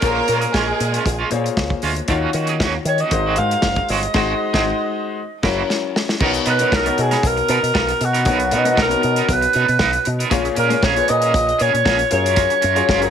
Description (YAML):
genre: disco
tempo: 117 BPM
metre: 4/4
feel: straight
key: Bb minor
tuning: A4 = 445 Hz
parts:
  - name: breathy alto saxophone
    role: melody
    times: 0.0-13.1 s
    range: F#4 to F5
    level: -18 LUFS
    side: right 1 dB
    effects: none
  - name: warm studio violin section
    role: second line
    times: 0.0-1.3 s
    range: Ab3 to Bb4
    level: -21 LUFS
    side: right 1 dB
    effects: none
  - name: clear baby grand piano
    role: accompaniment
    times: 0.0-13.1 s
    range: Bb2 to D#5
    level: -23 LUFS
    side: left 7 dB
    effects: none
  - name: electric guitar at the edge of break-up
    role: accompaniment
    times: 0.0-13.1 s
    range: Ab3 to A#4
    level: -24 LUFS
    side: right 8 dB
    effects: tremolo
  - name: fingered electric bass with an envelope filter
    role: bass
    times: 0.0-13.1 s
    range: Gb1 to Eb3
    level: -23 LUFS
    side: equal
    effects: none
  - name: warm soul drum kit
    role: drums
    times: 0.0-13.1 s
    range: crash cymbal, hi-hat, kick drum, snare drum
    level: -22 LUFS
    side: equal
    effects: none
room: light reverb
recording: none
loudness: -15 LUFS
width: side -8 dB against mid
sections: 0.0-6.2 A section; 6.2-13.1 B section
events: band accent 4.1-6.2; drum fill 5.2-6.2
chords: 0.0 Bbm7; 2.1 Ebm7; 3.1 Ab7; 5.2 Gb7; 6.2 Bmaj7; 10.3 Bbm7; 12.1 Gbmaj7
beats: | 0.03 0.54 1.06 1.57 | 2.09 2.60 3.12 3.63 | 4.15 4.66 5.18 5.69 | 6.21 6.72 7.23 7.75 | 8.26 8.78 9.29 9.80 | 10.32 10.83 11.35 11.86 | 12.37 12.89